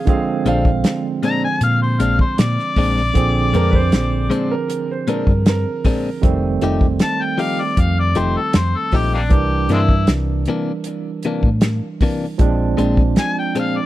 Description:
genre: straight-eighth soul blues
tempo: 78 BPM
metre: 4/4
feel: straight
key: unclear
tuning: A4 = 440 Hz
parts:
  - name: clear upright piano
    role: second line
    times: 0.0-6.2 s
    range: Ab4 to F5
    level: -25 LUFS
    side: right 4 dB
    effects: none
  - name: barky tine electric piano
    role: accompaniment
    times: 0.0-13.9 s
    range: D3 to Bb4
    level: -22 LUFS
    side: right 6 dB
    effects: medium stereo tremolo
  - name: warm soul drum kit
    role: drums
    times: 0.1-13.7 s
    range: hi-hat, kick drum, snare drum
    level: -16 LUFS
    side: equal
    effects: none
  - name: direct-recorded clean electric guitar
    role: stabs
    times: 0.5-13.8 s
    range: Bb2 to G4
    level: -24 LUFS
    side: left 4 dB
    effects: tape echo
  - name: hollow-body short-scale fingered electric bass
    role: bass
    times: 0.5-13.2 s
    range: F1 to Bb2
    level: -19 LUFS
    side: equal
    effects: none
  - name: mellow harmonica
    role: melody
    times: 1.3-13.9 s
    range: G3 to Bb5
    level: -21 LUFS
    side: left 3 dB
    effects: overdrive
room: small room reverb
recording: dry, close 1970s-style studio recording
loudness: -15 LUFS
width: side -15 dB against mid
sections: 0.0-13.9 A section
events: none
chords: 0.0 Bb9; 6.2 F9; 9.3 C9; 12.4 Bb9

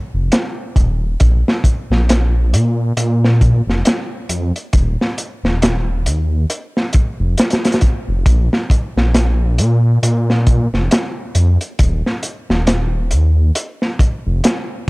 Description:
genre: trip hop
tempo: 68 BPM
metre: 4/4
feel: swing 59% on 16ths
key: unclear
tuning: A4 = 441 Hz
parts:
  - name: dark detuned saw bass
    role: bass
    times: 0.1-14.4 s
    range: Eb1 to Bb2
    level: -14 LUFS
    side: equal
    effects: none
  - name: crunchy breakbeat drum kit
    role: drums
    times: 0.3-14.7 s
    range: hi-hat, kick drum, snare drum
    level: -16 LUFS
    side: equal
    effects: none
room: little or no reverb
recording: dark, warm production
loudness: -13 LUFS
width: side -25 dB against mid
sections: 0.0-14.9 A section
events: none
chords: none

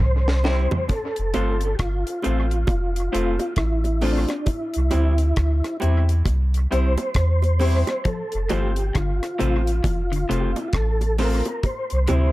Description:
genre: roots reggae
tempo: 67 BPM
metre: 4/4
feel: swing 62% on 16ths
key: unclear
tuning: A4 = 440 Hz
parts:
  - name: mellow tonewheel organ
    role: melody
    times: 0.0-12.3 s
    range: D4 to C5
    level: -27 LUFS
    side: equal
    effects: chorus vibrato, fast rotary speaker, tape echo
  - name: soft dub sub bass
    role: bass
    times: 0.0-12.3 s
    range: F1 to E2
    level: -20 LUFS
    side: equal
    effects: none
  - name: deep reggae drum kit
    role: drums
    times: 0.0-12.3 s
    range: hi-hat, kick drum, rim click, snare drum, toms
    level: -26 LUFS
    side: equal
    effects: dub echo
  - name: electric guitar through a small old amp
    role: accompaniment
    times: 0.4-12.3 s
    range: G3 to F4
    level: -30 LUFS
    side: right 3 dB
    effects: tape echo
  - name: dark baby grand piano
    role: stabs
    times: 0.4-12.3 s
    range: C4 to C5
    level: -29 LUFS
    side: left 4 dB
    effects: none
  - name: bongos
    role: percussion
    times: 0.4-12.3 s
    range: none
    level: -30 LUFS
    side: right 4 dB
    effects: none
  - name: clean electric guitar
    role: arpeggios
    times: 8.1-12.2 s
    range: C3 to F3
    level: -31 LUFS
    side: left 4 dB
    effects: none
room: little or no reverb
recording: none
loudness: -19 LUFS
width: side -18 dB against mid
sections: 0.9-12.3 A section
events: drum fill 0.0-0.9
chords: 0.0 C; 0.9 F; 4.5 C; 8.1 F; 11.6 C

